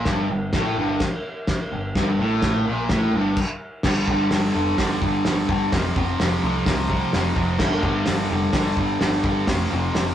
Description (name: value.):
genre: garage rock duo or trio.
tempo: 128 BPM.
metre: 4/4.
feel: straight.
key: G minor.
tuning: A4 = 443 Hz.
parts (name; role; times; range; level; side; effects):
fuzz guitar; riff; 0.0-10.1 s; F2 to G3; -22 LUFS; equal; distortion.
growling picked electric bass; bass; 0.0-10.1 s; F1 to C2; -28 LUFS; equal; overdrive.
cloth-damped thuddy drum kit; drums; 0.1-10.1 s; crash cymbal, hi-hat, kick drum, snare drum; -24 LUFS; equal; none.
room: moderate studio reverb, RT60 0.5 s.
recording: rough rehearsal-room recording, tube saturation, cassette tape.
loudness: -19 LUFS.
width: side -10 dB against mid.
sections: 0.0-3.8 A section; 3.8-10.1 B section.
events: stop 3.4-3.8.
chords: 0.0 N.C.; 3.8 G5; 5.7 F5; 7.6 G5; 9.5 F5.